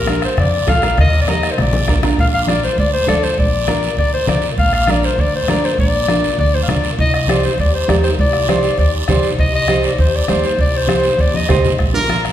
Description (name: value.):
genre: latin, cumbia.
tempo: 200 BPM.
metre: 4/4.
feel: straight.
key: Bb major.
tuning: A4 = 440 Hz.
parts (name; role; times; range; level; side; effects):
clear clarinet; melody; 0.0-11.7 s; Bb4 to F5; -18 LUFS; left 3 dB; none.
upright bass; bass; 0.0-12.3 s; Bb1 to F2; -20 LUFS; equal; none.
nylon-string guitar; accompaniment; 0.1-12.3 s; D4 to C5; -21 LUFS; right 4 dB; none.
bombo; percussion; 0.1-12.3 s; none; -19 LUFS; right 1 dB; none.
congas; percussion; 0.1-12.2 s; none; -23 LUFS; left 2 dB; none.
guiro; percussion; 0.1-12.3 s; none; -26 LUFS; right 5 dB; none.
brilliant trumpet; second line; 11.9-12.2 s; Bb4; -17 LUFS; equal; none.
room: wet recital hall reverb, RT60 1.5 s.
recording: recorded in a church or concert hall.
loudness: -13 LUFS.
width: side -11 dB against mid.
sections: 0.0-2.2 A section; 2.2-11.8 B section.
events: drum fill 1.7-2.2, 11.3-11.8.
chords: 0.0 Bb; 1.0 Eb; 1.6 Bb; 7.0 Cmadd9; 11.8 Bb.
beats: 0.07 0.37 0.67 | 0.97 1.27 1.57 1.88 | 2.18 2.48 2.78 3.08 | 3.38 3.68 3.98 4.28 | 4.58 4.88 5.18 5.48 | 5.78 6.08 6.38 6.68 | 6.98 7.28 7.58 7.88 | 8.19 8.49 8.79 9.09 | 9.39 9.69 9.99 10.29 | 10.59 10.89 11.19 11.49 | 11.79 12.09.